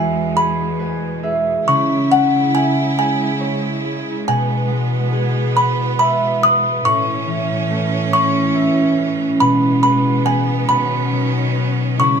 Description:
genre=children's music, lullaby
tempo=46 BPM (dotted quarters)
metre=6/8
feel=rubato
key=E major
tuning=A4 = 440 Hz
part: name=music box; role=melody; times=0.0-12.2 s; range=E5 to D#6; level=-17 LUFS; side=left 1 dB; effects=none
part: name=concert harp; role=accompaniment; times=0.0-12.2 s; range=A2 to G#5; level=-18 LUFS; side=equal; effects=none
part: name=clear symphonic string section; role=sustained chords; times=0.0-12.2 s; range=E2 to E4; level=-23 LUFS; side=right 4 dB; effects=none
room=light reverb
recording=none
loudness=-15 LUFS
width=side -7 dB against mid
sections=0.0-1.7 A section; 1.7-12.2 B section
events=harp fill 0.4-1.7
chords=0.0 E; 1.7 C#m; 4.3 E/B; 6.9 A; 9.4 E/B; 10.7 Badd9

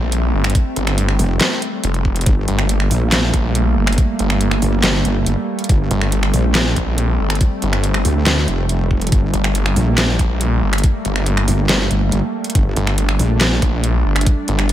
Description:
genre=heavy wobble dubstep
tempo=140 BPM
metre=4/4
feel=half-time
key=G minor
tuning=A4 = 438 Hz
part: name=evolving wavetable pad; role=sustained chords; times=0.0-14.7 s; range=G3 to D4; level=-22 LUFS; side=right 1 dB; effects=chorus, built-in reverb, sidechain pumping
part: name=snarling distorted saw bass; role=bass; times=0.0-14.7 s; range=F1 to Bb1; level=-17 LUFS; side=equal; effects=distortion, overdrive
part: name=dubstep drum kit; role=drums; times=0.1-14.7 s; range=finger snaps, handclaps, hi-hat, snare drum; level=-20 LUFS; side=equal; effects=none
part: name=electronic kick drum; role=drums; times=0.6-14.3 s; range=none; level=-15 LUFS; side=equal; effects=none
part: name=wobble bass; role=bass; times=1.2-13.6 s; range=F1 to D2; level=-17 LUFS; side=equal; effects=chorus, overdrive
room=little or no reverb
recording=none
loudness=-14 LUFS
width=side -12 dB against mid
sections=0.0-14.7 A section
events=none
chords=0.0 Gmadd9

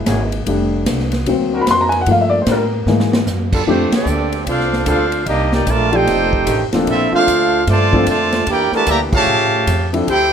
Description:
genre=jazz, big band swing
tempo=150 BPM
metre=4/4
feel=swing 64% on 8ths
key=F major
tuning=A4 = 440 Hz
part: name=warm upright piano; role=accompaniment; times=0.0-10.1 s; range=Fb3 to C6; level=-17 LUFS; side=left 2 dB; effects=none
part: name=upright bass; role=bass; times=0.0-10.3 s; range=Eb1 to A2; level=-21 LUFS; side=right 1 dB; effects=none
part: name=clear trombone section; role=sustained chords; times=0.1-9.2 s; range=Bb2 to A#4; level=-23 LUFS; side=equal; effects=none
part: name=swinging big-band drum kit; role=drums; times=0.1-10.2 s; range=crash cymbal, hi-hat, kick drum, ride cymbal, snare drum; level=-22 LUFS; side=equal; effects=none
part: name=clear trumpet section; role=melody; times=3.7-10.3 s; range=A3 to Bb5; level=-17 LUFS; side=right 1 dB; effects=none
part: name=dark trombone section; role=second line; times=3.7-10.3 s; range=Db3 to G4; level=-20 LUFS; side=right 2 dB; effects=none
room=moderate club reverb, RT60 0.8 s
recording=none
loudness=-13 LUFS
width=side -8 dB against mid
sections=0.0-3.7 A section; 3.7-10.3 B section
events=upright piano solo 0.0-3.7; drum fill 2.9-3.3; band accent 3.9, 9.1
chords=0.5 F69; 1.3 D7alt; 2.1 Gm7; 2.9 Gb9; 3.7 F69; 5.3 Cm9; 6.1 F13; 6.9 Bbmaj9; 8.5 Em7b5; 9.3 A7alt

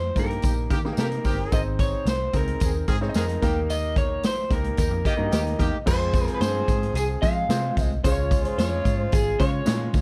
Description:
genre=uptempo 1960s-style soul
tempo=110 BPM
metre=4/4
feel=straight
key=unclear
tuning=A4 = 440 Hz
part: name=electric guitar through a small old amp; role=melody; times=0.0-10.0 s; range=Ab4 to F5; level=-30 LUFS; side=equal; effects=none
part: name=vintage muted picked electric bass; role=bass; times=0.0-10.0 s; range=G1 to F3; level=-30 LUFS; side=equal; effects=none
part: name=clear grand piano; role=accompaniment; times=0.2-10.0 s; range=Ab3 to Eb5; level=-33 LUFS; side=equal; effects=none
part: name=swinging big-band drum kit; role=drums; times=0.2-10.0 s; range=crash cymbal, hi-hat, kick drum, snare drum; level=-27 LUFS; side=equal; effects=none
part: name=tambourine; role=percussion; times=0.2-10.0 s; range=none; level=-45 LUFS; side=equal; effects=none
part: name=warm horn section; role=second line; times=0.4-9.9 s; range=Db3 to Ab4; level=-35 LUFS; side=equal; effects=none
room=small room ambience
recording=none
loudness=-24 LUFS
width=mono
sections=0.0-5.9 A section; 5.9-10.0 B section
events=none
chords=0.0 Eb; 1.5 Ab; 3.4 Eb; 5.9 Fm; 8.0 Db

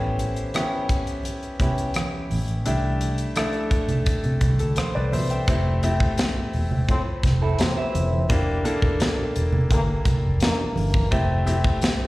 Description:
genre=lush 1970s-style soul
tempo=85 BPM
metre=4/4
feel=straight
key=unclear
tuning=A4 = 437 Hz
part: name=clear baby grand piano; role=accompaniment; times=0.0-12.1 s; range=A3 to G5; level=-27 LUFS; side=left 1 dB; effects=plate reverb, slapback echo
part: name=vintage muted fingered electric bass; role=bass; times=0.0-12.0 s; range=E1 to C3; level=-24 LUFS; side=equal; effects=none
part: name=tight funk drum kit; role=drums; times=0.2-12.0 s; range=hi-hat, kick drum, rim click, snare drum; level=-24 LUFS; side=equal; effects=none
part: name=congas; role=percussion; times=0.2-12.0 s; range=none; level=-28 LUFS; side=right 2 dB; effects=none
part: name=clear trombone section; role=stabs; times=6.9-11.1 s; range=G2 to C4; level=-28 LUFS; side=left 1 dB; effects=plate reverb, slapback echo
part: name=electric guitar through a small old amp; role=riff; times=7.4-8.3 s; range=E4 to E5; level=-27 LUFS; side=right 3 dB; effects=slapback echo
part: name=tambourine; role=percussion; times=11.5-12.0 s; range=none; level=-44 LUFS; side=left 2 dB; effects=none
room=light reverb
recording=live gig heard through the venue's PA, recital hall reverb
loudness=-20 LUFS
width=side -19 dB against mid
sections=0.0-5.5 A section; 5.5-12.1 B section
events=none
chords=0.0 A7; 2.7 C6; 5.5 Fmaj7; 8.3 Em7b5; 11.1 Fmaj7

